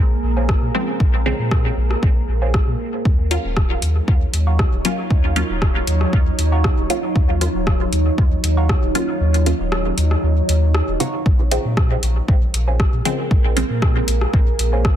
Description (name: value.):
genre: dub techno.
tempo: 117 BPM.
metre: 4/4.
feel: straight.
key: Bb minor.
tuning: A4 = 439 Hz.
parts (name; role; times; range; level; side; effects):
deep dark ambient pad; sustained chords; 0.0-15.0 s; Gb3 to Db5; -25 LUFS; right 2 dB; chorus, built-in reverb, sidechain pumping.
pure sine sub bass; bass; 0.0-14.9 s; Eb1 to Bb2; -19 LUFS; equal; sidechain pumping.
warbly dusty pluck; riff; 0.4-14.8 s; C5 to Db6; -31 LUFS; right 4 dB; chorus, sidechain pumping, dub echo.
deep house drum kit; drums; 0.5-15.0 s; hi-hat, rim click; -26 LUFS; left 1 dB; overdrive, dub echo.
electronic kick drum; drums; 0.5-15.0 s; none; -17 LUFS; equal; overdrive.
filtered dub chord stab; stabs; 0.7-13.8 s; Db3 to F4; -25 LUFS; equal; phaser, cassette tape, sidechain pumping, dub echo.
room: little or no reverb.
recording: dense, heavily limited modern master.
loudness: -16 LUFS.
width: side -11 dB against mid.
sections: 0.0-11.3 A section; 11.3-15.0 A section.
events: filter sweep on synth stab 0.0-11.3; kick drops out 9.2-11.3.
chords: 0.0 Bbm7; 3.1 Ebm7; 11.3 Bbm7.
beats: 0.49 | 1.00 1.51 2.03 2.54 | 3.05 3.57 4.08 4.59 | 5.11 5.62 6.13 6.64 | 7.16 7.67 8.18 8.69 | 9.21 9.72 10.23 10.75 | 11.26 11.77 12.28 12.80 | 13.31 13.82 14.34 14.85.